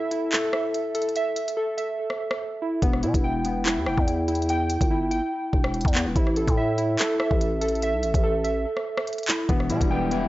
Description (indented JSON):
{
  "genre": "hip hop, drill",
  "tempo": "144 BPM",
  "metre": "4/4",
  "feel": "half-time",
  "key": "unclear",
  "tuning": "A4 = 440 Hz",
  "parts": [
    { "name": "warbly lo-fi synth keys", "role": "arpeggios", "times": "0.0-10.3 s", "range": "B3 to G5", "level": "-25 LUFS", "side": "right 1 dB", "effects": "chorus, tape echo" },
    { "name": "drill drum kit", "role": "drums", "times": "0.1-10.2 s", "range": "handclaps, hi-hat, kick drum, rim click", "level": "-25 LUFS", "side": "equal", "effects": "none" },
    { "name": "growling 808-style bass", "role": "bass", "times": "2.8-10.3 s", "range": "D1 to B2", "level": "-27 LUFS", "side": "equal", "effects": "none" },
    { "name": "electric guitar at the edge of break-up", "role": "accompaniment", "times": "9.5-10.3 s", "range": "E3 to E4", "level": "-27 LUFS", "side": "left 4 dB", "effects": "wide subtle chorus" }
  ],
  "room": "light reverb, digital ambience",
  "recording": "dry, gritty hardware recording, nothing above 7.8 kHz",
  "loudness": "-22 LUFS",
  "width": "side -16 dB against mid",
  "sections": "0.0-10.3 A section",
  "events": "break 0.0-2.8, 8.7-9.5; drums muted 2.4-2.8",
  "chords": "0.0 A5; 2.8 Em; 6.2 A5; 9.5 Em",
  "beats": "0.32 0.74 | 1.16 1.57 1.99 2.41 | 2.82 3.24 3.66 4.07 | 4.49 4.91 5.32 5.74 | 6.16 6.57 6.99 7.41 | 7.82 8.24 8.66 9.07 | 9.49 9.91"
}